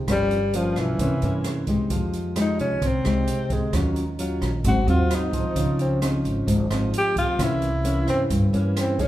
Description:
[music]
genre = bossa nova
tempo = 131 BPM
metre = 4/4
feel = straight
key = F minor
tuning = A4 = 443 Hz
[part]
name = nylon-string guitar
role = accompaniment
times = 0.0-9.1 s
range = G2 to Ab4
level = -24 LUFS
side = equal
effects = none
[part]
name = mellow tenor saxophone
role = melody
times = 0.1-9.1 s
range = E3 to G4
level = -25 LUFS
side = left 1 dB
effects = none
[part]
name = upright bass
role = bass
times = 0.1-8.7 s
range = G1 to G2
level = -27 LUFS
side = equal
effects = none
[part]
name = open jazz drum kit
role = drums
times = 0.1-9.1 s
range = hi-hat, kick drum, rim click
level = -29 LUFS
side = right 1 dB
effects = none
[sound]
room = wet recital hall reverb, RT60 1.4 s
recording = recorded in a church or concert hall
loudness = -20 LUFS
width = side -14 dB against mid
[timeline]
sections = 0.0-1.9 A section; 1.9-9.1 B section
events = tenor saxophone solo 1.9-9.1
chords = 0.1 Gm7b5; 1.0 C7b9; 1.9 Fm9; 3.7 Ebm9; 4.6 Ab7; 5.6 Dbmaj9; 7.4 C7b9

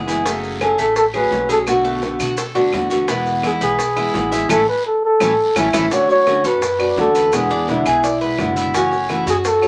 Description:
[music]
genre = latin, Cuban son and guajira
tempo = 170 BPM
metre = 4/4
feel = straight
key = unclear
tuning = A4 = 440 Hz
[part]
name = nylon-string guitar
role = accompaniment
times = 0.0-9.7 s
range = B2 to G#4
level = -23 LUFS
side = equal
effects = none
[part]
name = Cuban tres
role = arpeggios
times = 0.0-9.7 s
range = A3 to E5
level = -26 LUFS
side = equal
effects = none
[part]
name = upright bass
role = bass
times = 0.0-9.7 s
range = F#1 to B2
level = -33 LUFS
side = equal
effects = none
[part]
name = bongos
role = percussion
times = 0.1-9.7 s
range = none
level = -30 LUFS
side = equal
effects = none
[part]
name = guiro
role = percussion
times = 0.1-9.7 s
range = none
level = -36 LUFS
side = equal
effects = none
[part]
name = maracas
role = percussion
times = 0.1-9.7 s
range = none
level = -35 LUFS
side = equal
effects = none
[part]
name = trumpet with bucket mute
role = melody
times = 0.6-9.7 s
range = E4 to C#5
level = -19 LUFS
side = equal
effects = none
[part]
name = claves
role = percussion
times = 0.6-9.7 s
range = none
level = -31 LUFS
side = equal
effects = none
[sound]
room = moderate club reverb, RT60 0.6 s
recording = none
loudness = -17 LUFS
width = mono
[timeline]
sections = 0.0-5.9 A section; 5.9-9.7 B section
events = band accent 4.5-5.9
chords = 0.3 F#madd9; 1.7 Bm7; 3.1 E; 4.5 A; 5.9 Dmaj7; 7.3 E7; 8.7 F#m7

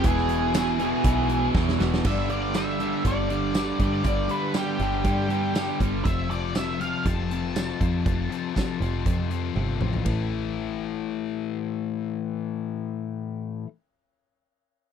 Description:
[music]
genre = classic rock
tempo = 120 BPM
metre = 4/4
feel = straight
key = A minor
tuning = A4 = 440 Hz
[part]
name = octave-fuzz lead guitar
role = melody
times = 0.0-9.5 s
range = G4 to A5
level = -30 LUFS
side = left 1 dB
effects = distortion
[part]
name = picked plugged-in twelve-string acoustic guitar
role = accompaniment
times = 0.0-6.1 s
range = E2 to G4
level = -37 LUFS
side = left 6 dB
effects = none
[part]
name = biting overdriven guitar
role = riff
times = 0.0-13.7 s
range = E2 to A3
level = -29 LUFS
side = left 11 dB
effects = none
[part]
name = biting overdriven guitar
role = riff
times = 0.0-2.0 s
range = E2 to E3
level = -31 LUFS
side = equal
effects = phaser
[part]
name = overdriven electric guitar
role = riff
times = 0.0-6.0 s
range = E2 to G3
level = -29 LUFS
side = right 20 dB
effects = none
[part]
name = overdriven picked electric bass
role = bass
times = 0.0-13.6 s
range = E1 to G2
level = -28 LUFS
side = right 1 dB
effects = none
[part]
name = big rock drum kit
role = drums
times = 0.0-10.2 s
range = crash cymbal, hi-hat, kick drum, ride cymbal, snare drum, tambourine, toms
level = -28 LUFS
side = right 1 dB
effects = none
[sound]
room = little or no reverb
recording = dry, close 1970s-style studio recording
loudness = -23 LUFS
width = side -8 dB against mid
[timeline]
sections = 0.0-2.0 A section; 2.0-10.1 B section; 10.1-14.1 C section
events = drum fill 1.5-2.0, 9.6-10.1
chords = 0.0 E; 2.0 G; 6.0 F; 10.1 A5

